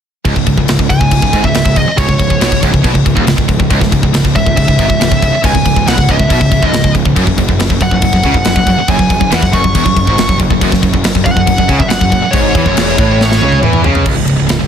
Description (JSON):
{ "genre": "heavy metal", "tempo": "139 BPM", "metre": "4/4", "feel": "straight", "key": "C# minor", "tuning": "A4 = 438 Hz", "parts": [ { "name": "high-gain distorted guitar", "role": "riff", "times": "0.3-14.7 s", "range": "C#2 to E3", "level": "-16 LUFS", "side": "right 11 dB", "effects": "distortion" }, { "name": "overdriven semi-hollow guitar", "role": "riff", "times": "0.3-14.1 s", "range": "C#2 to E3", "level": "-19 LUFS", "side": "equal", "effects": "none" }, { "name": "tight distorted guitar", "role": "riff", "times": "0.3-14.7 s", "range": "C#2 to E3", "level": "-17 LUFS", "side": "left 11 dB", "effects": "distortion" }, { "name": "fuzz picked electric bass", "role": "bass", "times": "0.3-14.7 s", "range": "C#1 to E2", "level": "-17 LUFS", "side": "equal", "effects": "overdrive" }, { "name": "tight metal drum kit", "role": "drums", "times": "0.3-14.6 s", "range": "crash cymbal, kick drum, ride cymbal, snare drum, toms", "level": "-14 LUFS", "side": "equal", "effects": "none" }, { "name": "high-gain lead guitar", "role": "melody", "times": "0.9-13.6 s", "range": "C#5 to C#6", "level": "-16 LUFS", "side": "equal", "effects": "distortion, digital delay" } ], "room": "little or no reverb", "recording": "dense, heavily limited modern master", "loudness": "-9 LUFS", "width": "side -8 dB against mid", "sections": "0.3-14.1 A section", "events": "drum fill 13.2-14.1", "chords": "0.3 C#m; 7.2 F#5; 14.1 N.C." }